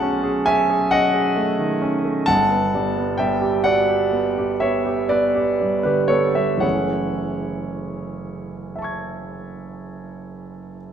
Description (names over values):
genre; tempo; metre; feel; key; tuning
classical, impressionist solo piano; 37-45 BPM (dotted quarters); 9/8; rubato; F# minor; A4 = 440 Hz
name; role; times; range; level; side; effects
clear concert grand piano; solo; 0.0-10.9 s; F#1 to G#6; -19 LUFS; right 1 dB; none
room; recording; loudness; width
wet scoring stage reverb, RT60 2.1 s; none; -18 LUFS; side -8 dB against mid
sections
0.0-10.9 A section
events
none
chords
0.0 B13; 2.3 Gmaj7; 6.6 F#m9